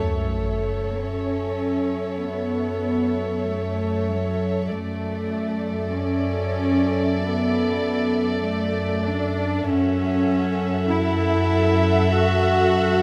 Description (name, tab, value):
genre	cinematic, suspense film score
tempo	free time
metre	none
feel	none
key	F# minor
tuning	A4 = 440 Hz
part	dark chamber violin section	melody	0.0-13.0 s	E5 to F#5	-36 LUFS	equal	none
part	warm chamber violin section	second line	0.0-13.0 s	C#5 to E5	-32 LUFS	equal	none
part	warm chamber viola section	accompaniment	0.0-13.0 s	A4	-30 LUFS	equal	none
part	dark chamber cello section	bass	0.0-13.0 s	F#3 to F#4	-26 LUFS	equal	none
part	warm chamber double bass section	bass	0.0-13.0 s	F#2	-28 LUFS	equal	none
part	sub drop	sound effects	0.0-2.3 s	none	-32 LUFS	equal	none
room	light reverb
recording	none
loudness	-23 LUFS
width	mono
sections	0.0-13.0 A section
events	band accent 0.0-0.4; impact 0.0-2.3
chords	0.0 F#m7; 4.7 Dadd9/F#; 9.7 F#m7